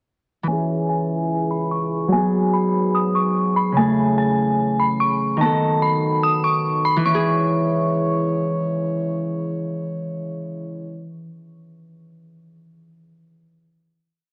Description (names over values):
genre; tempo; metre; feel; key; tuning
hip hop, drill; 146 BPM; 4/4; half-time; C# minor; A4 = 440 Hz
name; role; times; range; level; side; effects
Celtic harp; accompaniment; 0.4-11.5 s; C#3 to A4; -23 LUFS; equal; low-pass filter
dark detuned synth bell; melody; 0.5-8.2 s; G#5 to D#6; -24 LUFS; equal; chorus, low-pass filter
mellow French horn section; sustained chords; 0.5-11.1 s; C#2 to C#5; -30 LUFS; equal; low-pass filter
room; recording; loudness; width
studio reverb; dry, gritty hardware recording; -20 LUFS; mono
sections
0.5-7.1 breakdown; 7.1-10.3 final chord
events
filter sweep 0.5-7.1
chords
0.5 C#m; 2.1 G#m7; 3.8 Amaj7; 5.4 B7; 7.1 C#m